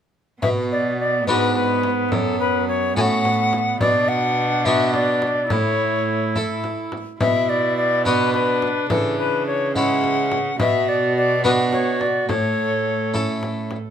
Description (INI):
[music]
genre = classical, renaissance-style consort dance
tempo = 71 BPM (dotted quarters)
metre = 6/8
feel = straight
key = B dorian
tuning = A4 = 440 Hz
[part]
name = alto recorder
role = melody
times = 0.4-13.1 s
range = A4 to G#5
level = -21 LUFS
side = left 3 dB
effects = none
[part]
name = warm viola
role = second line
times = 0.4-13.8 s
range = B3 to A4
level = -26 LUFS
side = right 5 dB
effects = none
[part]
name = harpsichord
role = accompaniment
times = 0.4-13.8 s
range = F#2 to A4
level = -24 LUFS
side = equal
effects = none
[part]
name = rich cello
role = bass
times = 0.4-13.8 s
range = F#2 to C#3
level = -27 LUFS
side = right 2 dB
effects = none
[part]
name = frame drum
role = percussion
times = 0.4-13.9 s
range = none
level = -28 LUFS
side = left 1 dB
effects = none
[sound]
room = light reverb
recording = none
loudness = -18 LUFS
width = side -8 dB against mid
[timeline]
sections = 0.4-13.9 A section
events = none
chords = 0.4 Bm; 2.1 F#m; 3.8 Bm; 5.5 A; 7.2 Bm; 8.9 C#m; 10.6 Bm; 12.3 A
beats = | 0.43 1.27 | 2.12 2.97 | 3.81 4.66 | 5.50 6.36 | 7.21 8.05 | 8.90 9.75 | 10.60 11.44 | 12.29 13.14